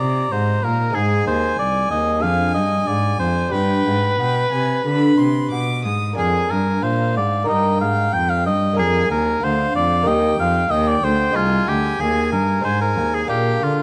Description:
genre	classical, baroque-style sonata movement with continuo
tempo	93 BPM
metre	4/4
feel	straight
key	Eb major from 6.2 s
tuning	A4 = 438 Hz
part	warm oboe	melody	0.0-13.8 s	F4 to G5	-23 LUFS	equal	none
part	warm violin	second line	0.0-13.8 s	F5 to Eb6	-30 LUFS	equal	none
part	lute	accompaniment	0.0-13.8 s	D2 to Bb4	-27 LUFS	equal	none
part	dark cello	bass	0.0-13.8 s	C2 to D3	-23 LUFS	equal	none
room	moderate recital hall reverb, RT60 1.6 s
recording	close, detailed microphones, vinyl crackle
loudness	-19 LUFS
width	mono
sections	0.0-13.8 A section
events	none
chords	0.0 Eb; 1.0 Ab; 2.2 Ddim/F; 3.5 G; 6.2 Bb7/F; 7.5 Eb/G; 8.8 Bb7; 10.1 Eb; 11.3 Ab/C; 12.6 Ab; 13.3 Bb7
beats	0.32 | 0.96 1.60 2.24 2.88 | 3.53 4.20 4.86 5.52 | 6.18 6.84 7.49 8.13 | 8.78 9.43 10.07 10.71 | 11.35 11.99 12.64 13.29

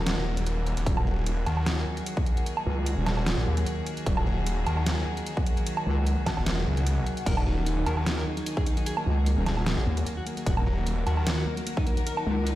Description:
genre	heavy wobble dubstep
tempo	150 BPM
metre	4/4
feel	swing 53% on 16ths, half-time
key	Eb minor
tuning	A4 = 440 Hz
part	rich chamber string section	sustained chords	0.0-12.6 s	Eb3 to Bb4	-33 LUFS	equal	sidechain pumping
part	wobble bass	bass	0.0-12.6 s	Eb1 to Eb2	-25 LUFS	equal	chorus, overdrive
part	dubstep drum kit	drums	0.1-12.6 s	crash cymbal, hi-hat, snare drum, woodblock	-32 LUFS	right 1 dB	overdrive
part	snarling distorted saw bass	bass	0.2-11.4 s	Eb1 to Eb2	-26 LUFS	equal	distortion, overdrive
part	electronic kick drum	drums	0.9-11.8 s	none	-27 LUFS	equal	overdrive
part	clean electric guitar	melody	7.3-12.5 s	Bb3 to Bb4	-35 LUFS	left 1 dB	digital delay
room	light reverb, digital ambience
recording	played on a big sound system in a bare room, large studio reverb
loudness	-24 LUFS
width	side -15 dB against mid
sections	0.0-12.6 A section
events	none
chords	0.0 Ebm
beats	0.07 0.47 | 0.86 1.26 1.67 2.06 | 2.46 2.87 3.27 3.67 | 4.07 4.46 4.87 5.26 | 5.67 6.07 6.46 6.87 | 7.26 7.67 8.06 8.46 | 8.87 9.27 9.66 10.06 | 10.46 10.87 11.27 11.66 | 12.06 12.46

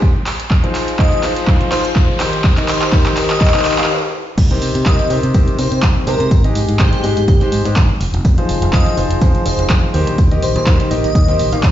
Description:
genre	piano house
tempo	124 BPM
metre	4/4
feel	swing 55% on 16ths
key	C minor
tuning	A4 = 440 Hz
part	clear concert grand piano	riff	0.0-11.7 s	C3 to F5	-19 LUFS	left 1 dB	sidechain pumping, low-pass filter, tape echo
part	electronic kick drum	drums	0.0-11.7 s	none	-14 LUFS	equal	none
part	tambourine	percussion	0.0-3.9 s	none	-36 LUFS	right 3 dB	none
part	riser	sound effects	0.0-3.9 s	none	-28 LUFS	left 2 dB	none
part	punchy analog drum machine	drums	0.3-11.7 s	crash cymbal, handclaps, hi-hat, ride cymbal	-22 LUFS	right 1 dB	none
part	airy dreamy lead	melody	1.0-11.7 s	G4 to Eb5	-22 LUFS	left 1 dB	chorus, tape echo
part	fingered electric bass	bass	4.4-11.7 s	F1 to C3	-18 LUFS	equal	sidechain pumping, low-pass filter
part	breakbeat sampler-style drum kit	drums	4.4-11.7 s	hi-hat, snare drum, tambourine	-34 LUFS	right 1 dB	none
room	light reverb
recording	played on a big sound system in a bare room, stone room reverb, nothing above 7.6 kHz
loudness	-12 LUFS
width	side -12 dB against mid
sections	0.0-4.4 A section; 4.4-11.7 B section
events	build-up 0.0-4.4; drum fill 0.0-3.9; riser 0.0-3.9; break 3.9-4.4; drop 4.4-11.7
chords	0.3 Fm7; 2.2 Eb6; 4.4 Cm7; 6.3 Abmaj7; 8.0 Fm7; 9.9 Eb6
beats	0.02 | 0.51 0.99 1.47 1.96 | 2.44 2.93 3.41 3.89 | 4.38 4.86 5.34 5.83 | 6.31 6.80 7.28 7.76 | 8.25 8.73 9.22 9.70 | 10.18 10.67 11.15 11.63

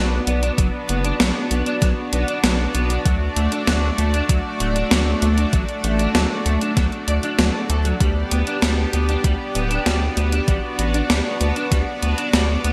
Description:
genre	synthwave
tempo	97 BPM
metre	4/4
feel	straight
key	G major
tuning	A4 = 438 Hz
part	soft supersaw	sustained chords	0.0-12.7 s	A3 to D5	-27 LUFS	equal	lush chorus, sidechain pumping
part	electric guitar at the edge of break-up	arpeggios	0.0-12.7 s	F#3 to D5	-28 LUFS	equal	ensemble chorus, delay
part	round analog bass	bass	0.0-12.7 s	D1 to D2	-23 LUFS	equal	sidechain pumping
part	gated 80s digital drum machine	drums	0.3-12.7 s	hi-hat, snare drum	-24 LUFS	equal	gated reverb, gated reverb snare, overdrive
part	electronic kick drum	drums	0.6-11.8 s	none	-22 LUFS	equal	overdrive
room	moderate lush hall reverb, RT60 1.6 s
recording	bright 1980s-style digital production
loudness	-20 LUFS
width	mono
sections	0.0-12.7 A section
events	none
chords	0.0 Bm; 3.1 D; 8.0 G/D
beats	| 0.58 1.20 1.82 2.44 | 3.06 3.67 4.29 4.91 | 5.53 6.15 6.77 7.39 | 8.01 8.62 9.24 9.86 | 10.48 11.10 11.72 12.34

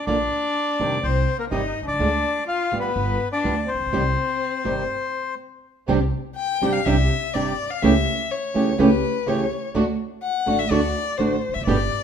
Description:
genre	tango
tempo	124 BPM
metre	4/4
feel	rubato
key	C minor, C major from 5.9 s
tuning	A4 = 440 Hz
part	bandoneon	melody	0.0-5.3 s	Bb4 to F5	-24 LUFS	left 2 dB	none
part	warm violin	second line	0.0-12.0 s	Bb3 to G5	-26 LUFS	left 6 dB	none
part	flamenco guitar	accompaniment	0.1-11.8 s	B2 to G4	-22 LUFS	right 3 dB	none
part	upright bass	bass	0.1-11.9 s	E1 to D2	-26 LUFS	right 1 dB	none
part	warm studio string section	stabs	5.9-11.9 s	A3 to G4	-30 LUFS	right 4 dB	none
room	moderate large studio reverb, RT60 1.2 s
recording	minimal, uncompressed stereo recording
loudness	-20 LUFS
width	side -8 dB against mid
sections	0.0-5.9 A section; 5.9-12.0 B section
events	stop 4.9-5.9; violin solo 5.9-12.0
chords	0.1 Bb; 1.0 Cm; 2.0 Ddim; 3.0 G; 3.9 Cm; 5.9 Csus2; 7.8 A7/C#; 9.8 D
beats	| 0.07 0.55 1.04 1.52 | 2.00 2.48 2.96 3.45 | 3.93 4.41 4.89 5.39 | 5.88 6.37 6.86 7.35 | 7.83 8.31 8.79 9.27 | 9.75 10.23 10.71 11.19 | 11.67

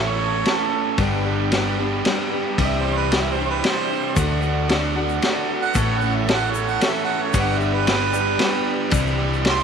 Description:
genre	folk rock and heartland rock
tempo	114 BPM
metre	3/4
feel	straight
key	unclear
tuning	A4 = 444 Hz
part	mellow harmonica	second line	0.0-9.6 s	A4 to C6	-25 LUFS	right 7 dB	none
part	picked steel-string acoustic guitar	accompaniment	0.0-9.6 s	G2 to A4	-27 LUFS	left 11 dB	none
part	bright tonewheel organ	sustained chords	0.0-9.6 s	A4 to D6	-34 LUFS	left 1 dB	none
part	overdriven electric guitar	riff	0.0-9.6 s	G2 to A4	-25 LUFS	right 12 dB	none
part	hollow-body short-scale fingered electric bass	bass	0.0-9.6 s	G1 to D2	-24 LUFS	left 1 dB	none
part	vintage drum kit	drums	0.5-9.6 s	kick drum, ride cymbal, snare drum	-23 LUFS	left 1 dB	none
part	tube shaker	percussion	4.2-9.6 s	none	-37 LUFS	left 16 dB	none
room	moderate echo chamber reverb, RT60 2.4 s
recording	1960s-style stereo with parts hard left and right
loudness	-18 LUFS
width	side -6 dB against mid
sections	0.0-9.6 A section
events	harmonica solo 0.0-9.6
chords	0.0 A; 1.0 G; 2.6 Cadd9; 4.2 D; 5.8 A; 7.3 G; 8.9 Cadd9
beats	0.47 | 0.99 1.52 2.05 | 2.58 3.11 3.64 | 4.17 4.70 5.23 | 5.76 6.28 6.81 | 7.34 7.87 8.40 | 8.93 9.46

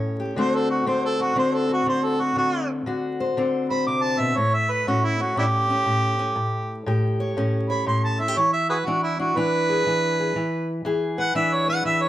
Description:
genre	acoustic country blues, solo or duo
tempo	120 BPM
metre	4/4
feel	swing 66% on 8ths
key	unclear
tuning	A4 = 440 Hz
part	fingerpicked steel-string acoustic guitar	accompaniment	0.0-12.1 s	A2 to C#5	-23 LUFS	left 2 dB	none
part	mellow harmonica	melody	0.4-12.1 s	D4 to D6	-22 LUFS	right 2 dB	none
room	moderate spring reverb, RT60 1.3 s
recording	vinyl crackle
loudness	-20 LUFS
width	side -13 dB against mid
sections	0.0-12.1 A section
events	harmonica solo 0.0-12.1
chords	0.4 D7; 4.4 A7; 8.4 E7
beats	| 0.38 0.88 1.37 1.87 | 2.37 2.87 3.37 3.86 | 4.36 4.86 5.36 5.86 | 6.36 6.86 7.35 7.85 | 8.35 8.85 9.35 9.85 | 10.35 10.85 11.35 11.85

